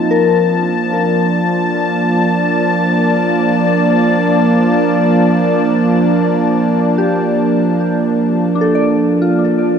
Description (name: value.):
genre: ambient.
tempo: free time.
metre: none.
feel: none.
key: Bb major.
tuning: A4 = 440 Hz.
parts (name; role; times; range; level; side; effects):
warm analog pad; sustained chords; 0.0-9.8 s; F3 to A5; -12 LUFS; right 1 dB; chorus.
analog drone; drone; 0.0-9.8 s; Bb3 to F4; -26 LUFS; left 1 dB; none.
soft synth bell; arpeggios; 0.1-9.8 s; D4 to D5; -18 LUFS; left 3 dB; chorus, phaser, tape echo.
room: wet concert hall reverb, RT60 2.5 s.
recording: dark, warm production.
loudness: -11 LUFS.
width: side -7 dB against mid.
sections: 0.0-9.8 A section.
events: none.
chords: 0.1 Bbmaj7.